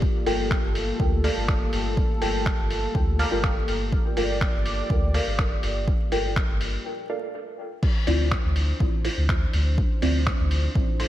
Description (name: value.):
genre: dub techno.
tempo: 123 BPM.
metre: 4/4.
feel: straight.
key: unclear.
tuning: A4 = 440 Hz.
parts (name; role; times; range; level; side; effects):
dark analog pad; sustained chords; 0.0-11.1 s; Bb3 to D5; -32 LUFS; left 1 dB; chorus, sidechain pumping.
soft dub sub bass; bass; 0.0-11.0 s; G1 to D2; -26 LUFS; equal; sidechain pumping.
electronic kick drum; drums; 0.0-10.9 s; none; -25 LUFS; equal; none.
deep mellow chord stab; stabs; 0.3-10.2 s; C4 to G5; -30 LUFS; equal; chorus, phaser, sidechain pumping, dub echo.
lo-fi sampler-style drum kit; drums; 0.3-11.1 s; crash cymbal, finger snaps, hi-hat; -31 LUFS; equal; none.
filtered dub chord stab; riff; 1.2-11.1 s; E4 to F5; -34 LUFS; right 3 dB; phaser, analog chorus, sidechain pumping, dub echo.
room: light reverb.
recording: vinyl crackle.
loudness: -21 LUFS.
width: side -13 dB against mid.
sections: 0.0-7.8 A section; 7.8-11.1 A section.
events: break 6.9-7.8.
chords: 0.0 Gm9; 7.8 Dm9.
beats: | 0.02 0.51 1.00 1.49 | 1.97 2.46 2.95 3.44 | 3.92 4.41 4.90 5.39 | 5.88 6.36 6.85 7.34 | 7.83 8.31 8.80 9.29 | 9.78 10.27 10.75.